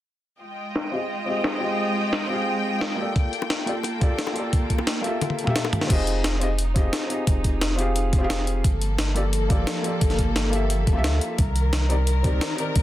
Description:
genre	liquid drum and bass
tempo	175 BPM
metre	4/4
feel	straight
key	unclear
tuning	A4 = 438 Hz
part	warm studio string section	sustained chords	0.4-12.8 s	Eb3 to G5	-29 LUFS	equal	none
part	breakbeat sampler-style drum kit	drums	0.8-12.8 s	crash cymbal, hi-hat, snare drum, toms	-27 LUFS	left 1 dB	low-pass filter on snare, low-pass filter on hats, low-pass filter on toms, low-pass filter on cymbals
part	felt-muted upright piano	accompaniment	0.9-12.8 s	Bb3 to F5	-28 LUFS	left 1 dB	low-pass filter, digital delay
part	electronic kick drum	drums	3.2-12.8 s	none	-21 LUFS	equal	none
part	bongos	percussion	3.4-5.7 s	none	-34 LUFS	left 6 dB	none
part	warm sub bass	bass	5.9-12.8 s	F1 to D2	-24 LUFS	equal	none
room	light reverb, studio reverb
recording	dense, heavily limited modern master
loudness	-21 LUFS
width	side -14 dB against mid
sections	0.4-5.9 A section; 5.9-12.8 B section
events	filter sweep on drum 0.4-5.9; filter sweep on felt piano 0.4-5.9; kick drops out 5.2-5.9; drum fill 5.2-5.9; drop 5.9-12.8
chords	0.4 Fm9; 3.2 Gm9; 5.9 Fm9; 8.6 Gm9; 11.4 Cm9

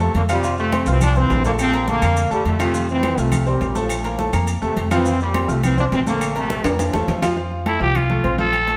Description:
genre	latin, salsa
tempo	208 BPM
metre	4/4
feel	straight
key	unclear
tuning	A4 = 438 Hz
part	bright trombone section	melody	0.0-7.2 s	A2 to D4	-24 LUFS	equal	none
part	bright baby grand piano	accompaniment	0.0-8.8 s	F3 to F6	-26 LUFS	equal	none
part	upright bass	bass	0.0-8.8 s	Bb1 to F2	-24 LUFS	equal	none
part	congas	percussion	0.0-8.8 s	none	-30 LUFS	equal	none
part	maracas	percussion	0.0-7.4 s	none	-39 LUFS	equal	none
part	agogo bells and timbales	percussion	0.1-8.8 s	none	-32 LUFS	equal	none
part	claves	percussion	0.3-8.7 s	none	-38 LUFS	equal	none
part	growling trumpet	melody	7.7-8.8 s	E4 to A4	-22 LUFS	equal	none
room	wet stone room reverb, RT60 1.4 s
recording	band playing live in one room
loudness	-19 LUFS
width	mono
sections	0.0-7.4 A section; 7.4-8.8 B section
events	drum fill 6.6-7.4; trumpet solo 7.4-8.8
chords	0.4 Bbmaj7; 2.7 Bbmaj7(no3); 7.4 F

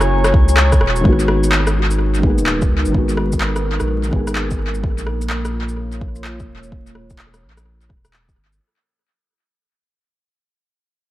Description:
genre	future garage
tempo	127 BPM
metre	4/4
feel	swing 64% on 16ths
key	G# minor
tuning	A4 = 435 Hz
part	felt-muted upright piano	accompaniment	0.0-4.9 s	D#3 to G#4	-22 LUFS	left 1 dB	sidechain pumping, tape echo
part	dark analog pad	sustained chords	0.0-8.6 s	G#3 to A#5	-25 LUFS	equal	chorus, sidechain pumping
part	soft dub sub bass	bass	0.0-8.6 s	D#1 to C#2	-19 LUFS	equal	sidechain pumping
part	electronic rim click, shaker and handclaps	drums	0.0-8.6 s	none	-22 LUFS	equal	overdrive, tape echo
part	drifting glass-harmonics texture	texture	0.0-1.1 s	C#5	-27 LUFS	right 3 dB	chorus, built-in reverb
part	electronic kick drum	drums	0.3-8.4 s	none	-17 LUFS	equal	overdrive
room	light reverb, digital ambience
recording	echo-heavy mix, vinyl crackle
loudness	-14 LUFS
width	side -15 dB against mid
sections	0.0-1.0 A section; 1.0-8.6 B section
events	fade-out 1.0-8.6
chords	0.0 F#7; 1.0 G#m7; 4.8 A#dim

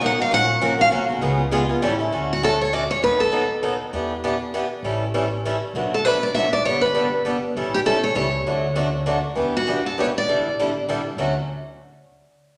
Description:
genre	acoustic string swing (jazz manouche)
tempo	199 BPM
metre	3/4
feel	swing 58% on 8ths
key	D major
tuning	A4 = 436 Hz
part	picked acoustic archtop guitar	accompaniment	0.0-1.9, 5.8-11.3 s	B2 to B4	-32 LUFS	equal	none
part	picked swing-style acoustic guitar	accompaniment	0.0-11.3 s	B2 to A#4	-26 LUFS	equal	none
part	upright bass	bass	0.0-11.3 s	G1 to E2	-32 LUFS	equal	none
part	picked steel-string acoustic guitar	melody	0.1-3.6, 5.9-10.9 s	F#4 to F#5	-23 LUFS	equal	none
room	wet large studio reverb, RT60 1.4 s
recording	none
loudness	-22 LUFS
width	mono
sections	0.0-2.1 A section; 2.1-9.4 B section; 9.4-11.2 C section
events	steel-string acoustic guitar solo 0.0-2.1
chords	0.3 F#maj7/A#; 1.2 C#7; 1.8 A7; 2.1 Dmaj7; 3.0 B7/D#; 3.9 Em7; 4.8 A7; 5.7 Bm7; 6.6 Gadd9; 7.6 A7; 8.5 D; 9.4 Em9; 10.3 A7sus4; 11.2 Dmaj7

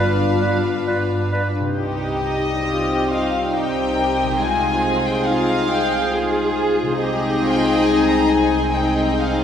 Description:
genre	cinematic, emotional film score for orchestra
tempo	69 BPM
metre	3/4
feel	rubato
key	C minor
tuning	A4 = 442 Hz
part	warm studio violin section	melody	0.0-9.4 s	Eb5 to Bb5	-24 LUFS	left 2 dB	none
part	clear studio violin section	second line	0.0-9.4 s	G4 to Eb5	-27 LUFS	left 1 dB	none
part	concert flute	second line	0.0-1.4 s	D5	-30 LUFS	right 2 dB	none
part	warm clarinet	second line	0.0-1.5 s	F4	-32 LUFS	left 3 dB	none
part	warm oboe	second line	0.0-1.5 s	B4	-28 LUFS	right 2 dB	none
part	warm studio viola section	accompaniment	0.0-9.4 s	C4 to G5	-22 LUFS	left 1 dB	none
part	dark French horn section	sustained chords	0.0-9.4 s	G3 to F4	-24 LUFS	left 2 dB	none
part	concert harp	arpeggios	0.0-9.4 s	G2 to B5	-29 LUFS	left 3 dB	none
part	dark studio cello section	bass	0.0-9.4 s	G2 to Ab4	-26 LUFS	right 2 dB	none
part	dark studio double bass section	bass	0.0-9.4 s	G1 to C2	-28 LUFS	right 2 dB	none
room	wet church reverb, RT60 2.9 s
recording	recorded in a church or concert hall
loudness	-17 LUFS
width	side -8 dB against mid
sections	0.0-1.8 A section; 1.8-9.4 B section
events	none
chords	0.0 G7; 1.8 Cm; 4.4 Fm7/C

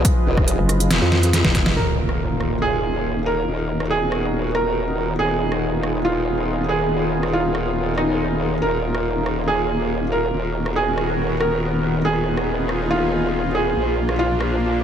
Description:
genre	heavy wobble dubstep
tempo	140 BPM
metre	4/4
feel	half-time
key	unclear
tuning	A4 = 441 Hz
part	supersaw pad	sustained chords	0.0-14.8 s	Eb3 to Eb5	-25 LUFS	equal	sidechain pumping, low-pass filter
part	formant-sweep wobble bass	bass	0.0-14.8 s	Eb1 to Bb1	-23 LUFS	left 1 dB	chorus, overdrive
part	dubstep drum kit	drums	0.0-14.5 s	hi-hat, rim click, snare drum	-23 LUFS	equal	studio reverb
part	electronic kick drum	drums	0.0-1.6 s	none	-19 LUFS	equal	overdrive, studio reverb
part	vowel-sweep wobble bass	bass	0.6-1.7 s	F1 to F2	-18 LUFS	equal	chorus, overdrive
part	felt-muted upright piano	melody	1.8-14.8 s	Eb4 to Bb4	-23 LUFS	right 2 dB	ping-pong delay
part	impact	sound effects	1.8-3.5 s	none	-27 LUFS	equal	none
room	light reverb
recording	none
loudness	-18 LUFS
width	side -8 dB against mid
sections	0.0-1.8 A section; 1.8-14.8 B section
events	drop 0.0-1.8; drum fill 1.1-1.8; band accent 1.7; impact 1.8-3.5; filter sweep on supersaw synth 1.8-14.8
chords	0.0 Fm7b5; 1.8 Ebsus2; 3.5 Abm7/Eb; 5.2 Fdim/Eb; 8.6 Ebsus2; 10.3 Abm7/Eb; 12.0 Fdim/Eb; 13.8 Bb

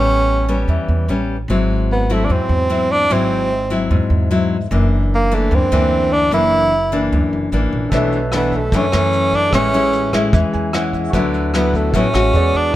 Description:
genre	bossa nova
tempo	149 BPM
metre	4/4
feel	straight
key	A major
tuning	A4 = 439 Hz
part	breathy tenor saxophone	melody	0.0-12.8 s	A3 to E4	-17 LUFS	right 2 dB	none
part	nylon-string guitar	accompaniment	0.0-12.7 s	F#2 to F#4	-18 LUFS	left 3 dB	none
part	upright bass	bass	0.0-12.7 s	F#1 to F#2	-20 LUFS	right 1 dB	none
part	warm concert grand piano	accompaniment	7.9-12.8 s	E4 to G#5	-25 LUFS	right 1 dB	none
part	vintage brush drum kit	drums	7.9-12.6 s	hi-hat, kick drum, rim click	-23 LUFS	equal	none
room	little or no reverb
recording	none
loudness	-14 LUFS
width	side -14 dB against mid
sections	0.0-12.8 A section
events	grand piano fill 10.3-11.1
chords	0.0 A9; 1.5 G#aug7; 4.7 F#7b13; 7.9 Bm11; 9.5 Amaj7; 11.1 D69; 12.3 E9

